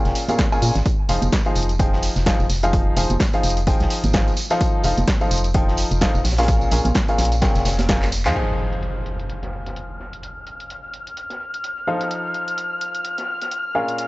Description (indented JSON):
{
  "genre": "piano house",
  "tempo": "128 BPM",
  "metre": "4/4",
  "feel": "swing 57% on 16ths",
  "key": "F minor",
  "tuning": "A4 = 440 Hz",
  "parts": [
    { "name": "clear upright piano", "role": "riff", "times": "0.0-14.1 s", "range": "Bb2 to Ab5", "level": "-24 LUFS", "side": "left 1 dB", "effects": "sidechain pumping" },
    { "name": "organ-like FM bass", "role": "bass", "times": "0.1-8.3 s", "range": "F1 to Bb2", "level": "-21 LUFS", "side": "equal", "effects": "sidechain pumping" },
    { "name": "crunchy breakbeat drum kit", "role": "drums", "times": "0.1-14.1 s", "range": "hi-hat, snare drum", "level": "-35 LUFS", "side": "equal", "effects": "none" },
    { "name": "punchy analog drum machine", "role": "drums", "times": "0.1-14.1 s", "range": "crash cymbal, handclaps, hi-hat, snare drum", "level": "-26 LUFS", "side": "equal", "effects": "low-pass filter on hats, low-pass filter on snare, low-pass filter on cymbals, low-pass filter on room" },
    { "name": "tambourine and congas", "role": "percussion", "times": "0.2-8.3 s", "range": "none", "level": "-30 LUFS", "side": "right 3 dB", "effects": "none" },
    { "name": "electronic kick drum", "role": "drums", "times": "0.4-8.0 s", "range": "none", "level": "-20 LUFS", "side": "equal", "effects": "none" },
    { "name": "dark chamber violin section", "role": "sustained chords", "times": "8.4-14.1 s", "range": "F6", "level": "-26 LUFS", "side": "left 1 dB", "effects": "sidechain pumping, low-pass filter" },
    { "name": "impact", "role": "sound effects", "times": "8.4-10.2 s", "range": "none", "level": "-28 LUFS", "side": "equal", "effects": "none" }
  ],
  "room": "studio ambience",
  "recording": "dry, gritty hardware recording, transformer saturation, nothing above 7.9 kHz",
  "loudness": "-18 LUFS",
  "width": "side -21 dB against mid",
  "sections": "0.0-8.4 A section; 8.4-14.1 B section",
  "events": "drum fill 8.0-8.4; band accent 8.2; impact 8.4-10.2; filter sweep on violin section 8.4-14.1",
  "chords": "0.0 Bbm7; 0.9 Fm7; 4.4 F7; 6.2 Bbm7; 8.4 Fm7; 11.9 F7"
}